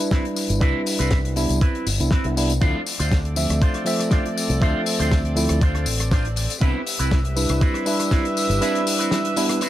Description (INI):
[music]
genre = nu-disco, nu disco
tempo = 120 BPM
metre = 4/4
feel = swing 53% on 16ths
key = unclear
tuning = A4 = 440 Hz
[part]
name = tine electric piano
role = accompaniment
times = 0.0-9.6 s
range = F3 to E5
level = -24 LUFS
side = right 1 dB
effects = overdrive, sidechain pumping, analog delay
[part]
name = damped 70s drum kit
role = drums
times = 0.0-9.7 s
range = hi-hat, rim click, snare drum, tambourine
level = -26 LUFS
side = left 3 dB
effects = none
[part]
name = electric guitar with an envelope filter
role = riff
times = 0.1-9.7 s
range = C4 to C5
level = -29 LUFS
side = right 2 dB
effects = wide subtle chorus, analog delay
[part]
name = electronic kick drum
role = drums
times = 0.1-8.2 s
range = none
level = -19 LUFS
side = equal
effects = overdrive
[part]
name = fingered electric bass with an envelope filter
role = bass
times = 0.5-8.6 s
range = G1 to D2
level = -23 LUFS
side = equal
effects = none
[part]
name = rich chamber string section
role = sustained chords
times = 2.6-9.7 s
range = C4 to E5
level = -29 LUFS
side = equal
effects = sidechain pumping
[sound]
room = light reverb, small room reverb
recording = none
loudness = -18 LUFS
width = side -13 dB against mid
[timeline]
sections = 0.0-9.7 A section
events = kick drops out 8.6-9.7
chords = 0.0 Cmaj7; 2.6 Dm7; 6.6 Cmaj7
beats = 0.12 | 0.62 1.12 1.62 2.12 | 2.62 3.12 3.62 4.12 | 4.62 5.12 5.62 6.12 | 6.62 7.12 7.62 8.12 | 8.62 9.12 9.62